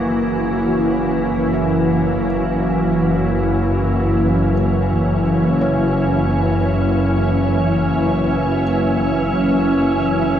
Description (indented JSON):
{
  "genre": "ambient",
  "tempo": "free time",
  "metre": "none",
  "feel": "none",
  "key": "F# mixolydian",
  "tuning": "A4 = 440 Hz",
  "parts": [
    { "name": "soft additive organ-like pad", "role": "sustained chords", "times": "0.0-10.4 s", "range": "D#3 to G#4", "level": "-17 LUFS", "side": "equal", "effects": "ensemble chorus, built-in reverb" },
    { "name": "felt-muted upright piano", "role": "arpeggios", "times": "0.0-10.4 s", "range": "C#5 to E5", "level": "-33 LUFS", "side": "left 1 dB", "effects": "none" },
    { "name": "rich studio double bass section", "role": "bass", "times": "0.0-10.4 s", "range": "F#1", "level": "-21 LUFS", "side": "equal", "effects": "none" },
    { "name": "bowed-like drone", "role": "drone", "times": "4.9-10.4 s", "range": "none", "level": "barely audible", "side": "none", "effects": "none" },
    { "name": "wind-like tuned noise texture", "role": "texture", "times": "0.0-10.4 s", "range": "E5", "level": "-32 LUFS", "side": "right 5 dB", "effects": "built-in reverb" }
  ],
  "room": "wet huge ambient reverb, RT60 7.3 s",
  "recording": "dark, warm production",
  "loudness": "-15 LUFS",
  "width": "side -10 dB against mid",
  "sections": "0.0-10.4 A section",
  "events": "fade-in on synth texture 0.0-10.4",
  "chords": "0.0 F#7"
}